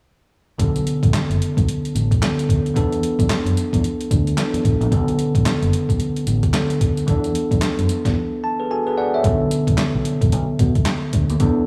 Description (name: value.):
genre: R&B, new jack swing.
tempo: 111 BPM.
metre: 4/4.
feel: swing 60% on 16ths.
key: B minor.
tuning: A4 = 440 Hz.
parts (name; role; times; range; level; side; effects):
bell-like tine electric piano; accompaniment; 0.6-11.7 s; C#3 to A5; -23 LUFS; equal; none.
fingered electric bass; bass; 0.6-11.6 s; F#1 to B2; -23 LUFS; equal; none.
boom bap sampler-style drum kit; drums; 0.6-11.6 s; handclaps, hi-hat, kick drum, snare drum; -23 LUFS; equal; none.
room: little or no reverb.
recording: small room ambience.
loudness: -19 LUFS.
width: mono.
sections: 0.6-9.2 A section; 9.2-11.7 B section.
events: drums muted 8.2-9.2; tine electric piano fill 8.2-9.2.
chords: 0.6 Bm9; 2.8 E7sus4; 4.9 Bm9; 7.1 E7sus4; 9.2 Bm9.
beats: | 0.59 1.13 1.67 2.21 | 2.75 3.30 3.84 4.38 | 4.92 5.46 6.00 6.54 | 7.08 7.62 8.16 8.70 | 9.24 9.78 10.32 10.86 | 11.40.